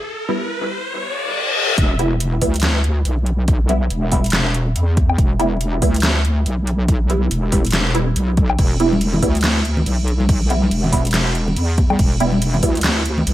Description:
deep dubstep; 141 BPM; 4/4; swing 59% on 16ths, half-time; E minor; A4 = 440 Hz
riser and reverse cymbal; sound effects; 0.0-1.8 s; -20 LUFS; left 2 dB
filtered dub chord stab; stabs; 0.3-12.8 s; G3 to E4; -23 LUFS; right 2 dB; phaser, ensemble chorus, dub echo
wobble bass; bass; 1.8-13.3 s; E1 to E2; -18 LUFS; equal; chorus
dubstep drum kit; drums; 1.8-13.3 s; crash cymbal, handclaps, hi-hat, snare drum, woodblock; -22 LUFS; equal
electronic kick drum; drums; 1.8-12.7 s; -17 LUFS; equal; overdrive
congas; percussion; 8.9-13.2 s; -22 LUFS; left 1 dB
digital ambience; vinyl crackle; -15 LUFS; side -14 dB against mid
0.0-1.8 A section; 1.8-13.3 B section
build-up 0.0-1.8; riser 0.0-1.8; break 0.1-1.8; reverse cymbal 0.9-1.8; drop 1.8-13.3
0.0 Em

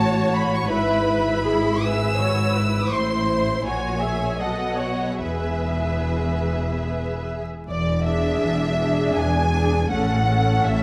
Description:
classical, slow romantic movement for string orchestra; 71-86 BPM; 3/4; rubato; E major; A4 = 441 Hz
rich studio violin section; melody; 0.0-10.8 s; D5 to E6; -30 LUFS; equal
warm studio violin section; second line; 0.0-10.8 s; E4 to G#5; -29 LUFS; equal
clear studio viola section; accompaniment; 0.0-10.8 s; C#4 to E5; -29 LUFS; equal
rich studio double bass section; bass; 0.0-10.8 s; E1 to B1; -28 LUFS; equal
warm studio cello section; bass; 0.0-10.8 s; E2 to B2; -28 LUFS; equal
wet concert hall reverb, RT60 1.7 s; vinyl crackle; -22 LUFS; mono
0.0-7.7 A section; 7.7-10.8 B section
0.0 F#m/A; 0.7 E/G#; 2.9 Am; 3.6 F#7/A#; 4.4 B7; 5.2 E; 7.7 E7; 9.9 A

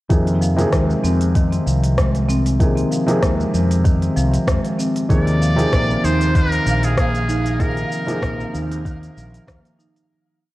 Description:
organic downtempo; 96 BPM; 4/4; swing 55% on 16ths; F minor; A4 = 442 Hz
felt-muted upright piano; accompaniment; 0.1-10.1 s; C3 to Ab4; -24 LUFS; equal; sidechain pumping, digital delay
marimba with medium mallets; arpeggios; 0.1-10.1 s; Eb3 to Eb4; -22 LUFS; equal; digital delay
mellow fretless electric bass; bass; 0.1-9.6 s; Bb1 to F2; -20 LUFS; equal; tube saturation, analog chorus, sidechain pumping
electronic kick drum; drums; 0.1-9.6 s; -18 LUFS; equal; studio reverb
organic electronic drum kit; drums; 0.1-10.1 s; hi-hat, rim click, shaker; -27 LUFS; left 1 dB; studio reverb
trumpet with metal mute; melody; 5.1-8.9 s; Ab4 to D5; -23 LUFS; left 1 dB; digital delay
twinkling granular texture; texture; 5.9-10.1 s; F5; -33 LUFS; right 4 dB; built-in reverb
light reverb, small room ambience; worn, warbling old tape, cassette tape, warbly pitch drift; -15 LUFS; side -17 dB against mid
0.1-10.1 groove
fade-out 6.8-10.1
0.1 Fm7; 5.1 Ebsus2

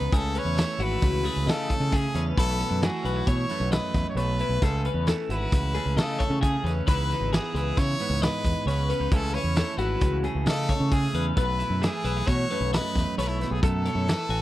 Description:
math rock and midwest emo; 133 BPM; 5/4; straight; A lydian; A4 = 441 Hz
brilliant trumpet; melody; 0.0-14.4 s; E4 to C#5; -31 LUFS; equal
twelve-string electric guitar; accompaniment; 0.0-14.4 s; F#2 to F#4; -32 LUFS; right 6 dB
twelve-string electric guitar; arpeggios; 0.0-14.4 s; F#4 to G#5; -32 LUFS; left 6 dB; spring reverb
growling fingered electric bass; bass; 0.0-14.4 s; G#1 to C#3; -27 LUFS; equal; overdrive
loose indie drum kit; drums; 0.1-14.4 s; hi-hat, kick drum, snare drum; -27 LUFS; equal
little or no reverb; dry, close 1970s-style studio recording; -23 LUFS; side -15 dB against mid
0.0-14.4 A section
0.1 Amaj7; 2.4 B7sus4; 4.6 Amaj7; 6.9 C#m9; 9.1 Amaj7; 11.4 B7sus4

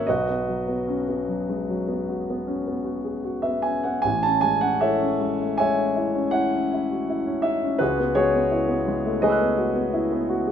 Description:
classical, impressionist solo piano; 73-87 BPM; 5/4; rubato; A4 = 440 Hz
warm concert grand piano; solo; 0.0-10.5 s; A1 to F#6; -21 LUFS; equal
moderate recital hall reverb, RT60 1.6 s; minimal, uncompressed stereo recording; -21 LUFS; side -8 dB against mid
0.0-10.5 A section
0.1 Badd9; 4.1 Amaj7; 7.8 C#m11

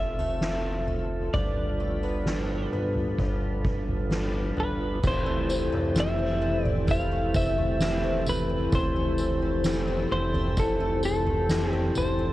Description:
dream pop; 65 BPM; 4/4; straight; F lydian; A4 = 440 Hz
clean electric guitar; melody; 0.0-12.3 s; A4 to F5; -30 LUFS; equal; ping-pong delay
mellow tonewheel organ; sustained chords; 0.0-12.3 s; E3 to B4; -32 LUFS; right 1 dB; slow rotary speaker
picked twelve-string acoustic guitar; arpeggios; 0.0-12.3 s; E3 to D4; -32 LUFS; left 3 dB; analog chorus, ping-pong delay
chorused synth bass; bass; 0.0-12.3 s; F1 to G1; -30 LUFS; equal
soft-mallet drum kit; drums; 0.2-12.2 s; crash cymbal, kick drum, snare drum, tambourine, toms; -30 LUFS; equal
light reverb, studio ambience; worn, warbling old tape, cassette tape, warbly pitch drift, faint mains hum; -24 LUFS; side -16 dB against mid
0.0-5.0 A section; 5.0-12.3 B section
0.0 F; 1.3 G7; 5.0 Fmaj7

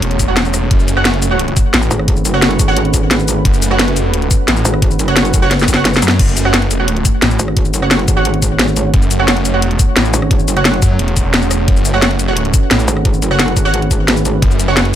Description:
dark technical drum and bass; 175 BPM; 4/4; straight; F# minor; A4 = 440 Hz
deep dark ambient pad; sustained chords; 0.0-15.0 s; A3 to C#5; -20 LUFS; right 3 dB; chorus, built-in reverb, sidechain pumping
snarling distorted saw bass; bass; 0.0-15.0 s; E1 to F#2; -16 LUFS; equal; distortion, overdrive
drum and bass drum kit; drums; 0.0-14.9 s; crash cymbal, hi-hat, rim click, shaker, snare drum; -15 LUFS; left 1 dB; overdrive
electronic kick drum; drums; 0.2-14.5 s; -14 LUFS; equal
orchestra-hit-like synth stab; stabs; 0.3-14.8 s; F#4 to F#5; -20 LUFS; right 4 dB; built-in reverb, ping-pong delay
metallic wobble bass; bass; 1.9-10.8, 12.9-14.4 s; F#1 to G#1; -16 LUFS; equal; chorus
little or no reverb; -11 LUFS; side -11 dB against mid
0.0-15.0 A section
drum fill 5.5-6.2
0.0 F#m

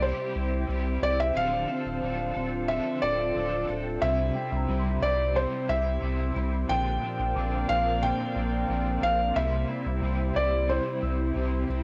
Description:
dream pop; 90 BPM; 4/4; straight; C mixolydian; A4 = 438 Hz
felt-muted upright piano; melody; 0.0-11.7 s; C5 to G5; -31 LUFS; equal; cassette tape, tape echo
electric guitar at the edge of break-up; accompaniment; 0.0-11.8 s; Bb2 to A4; -38 LUFS; equal; tremolo, ensemble chorus, cassette tape
warbly tape-like pad; sustained chords; 0.0-11.8 s; D3 to F5; -37 LUFS; equal; chorus, built-in reverb, cassette tape
mellow electric guitar; arpeggios; 0.0-11.8 s; Bb2 to A4; -38 LUFS; equal; ensemble chorus, cassette tape, tape echo
saturated sub bass; bass; 0.0-11.8 s; D1 to C2; -32 LUFS; equal
small celesta; texture; 2.0-11.8 s; G5 to E6; -45 LUFS; equal; cassette tape, tape echo
moderate studio reverb, RT60 0.5 s; home recording on cassette; -27 LUFS; mono
0.0-11.8 A section
0.0 C; 1.4 Dm7; 4.0 C; 6.7 Bbadd9; 9.4 C

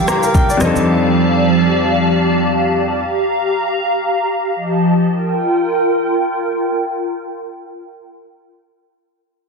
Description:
amapiano; free time; G minor; A4 = 436 Hz
clear baby grand piano; accompaniment; 0.0-3.0 s; F2 to Bb5; -16 LUFS; left 3 dB; low-pass filter
hollow soft pad; sustained chords; 0.0-8.1 s; F3 to Bb5; -15 LUFS; right 1 dB; ensemble chorus, low-pass filter
downlifter; sound effects; 0.0-0.9 s; barely audible
smooth R&B drum kit; drums; 0.1-0.9 s; kick drum, rim click, shaker; -17 LUFS; equal
congas; percussion; 0.3-0.9 s; -22 LUFS; right 3 dB
light reverb, digital ambience; dense, heavily limited modern master; -13 LUFS; side -4 dB against mid
0.0-5.1 A section; 5.1-9.3 B section
grand piano fill 0.0-0.9
0.0 Gm7; 0.6 F13; 3.0 Gm7; 4.6 F9; 5.1 Gm7

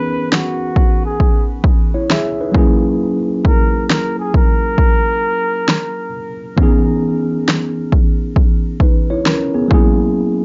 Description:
lo-fi hip hop; 67 BPM; 4/4; swing 62% on 16ths; C# dorian; A4 = 440 Hz
trumpet with bucket mute; melody; 0.0-6.5 s; F#4 to B4; -23 LUFS; equal; low-pass filter, tape echo, plate reverb
mellow tine electric piano; accompaniment; 0.0-10.4 s; E3 to E5; -20 LUFS; equal; low-pass filter, plate reverb
deep house drum kit; drums; 0.3-10.0 s; kick drum, snare drum; -16 LUFS; equal; overdrive
light reverb; nothing above 7.5 kHz; -15 LUFS; mono
0.0-10.4 A section
break 0.0-10.4
0.0 C#m7; 2.5 F#7; 6.6 C#m7; 9.7 F#7

